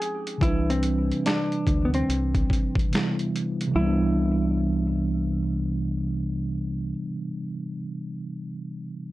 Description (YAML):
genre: lo-fi hip hop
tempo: 72 BPM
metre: 4/4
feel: swing 64% on 16ths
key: C major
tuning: A4 = 444 Hz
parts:
  - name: hollow-body jazz guitar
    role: melody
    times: 0.0-6.9 s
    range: B3 to Ab4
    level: -29 LUFS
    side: equal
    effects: low-pass filter, plate reverb, analog delay
  - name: mellow tine electric piano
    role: accompaniment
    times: 0.0-9.1 s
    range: C3 to B4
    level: -27 LUFS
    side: right 1 dB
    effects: medium stereo tremolo, low-pass filter
  - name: boom bap sampler-style drum kit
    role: drums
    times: 0.0-3.7 s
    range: hi-hat, kick drum, snare drum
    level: -26 LUFS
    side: equal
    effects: overdrive
  - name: deep dub fingered electric bass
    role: bass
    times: 0.4-6.9 s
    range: C2 to D2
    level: -28 LUFS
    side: equal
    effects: none
room: moderate studio reverb, RT60 0.7 s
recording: cassette tape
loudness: -23 LUFS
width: side -17 dB against mid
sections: 0.0-3.8 A section; 3.8-7.1 B section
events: none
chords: 0.4 Cmaj9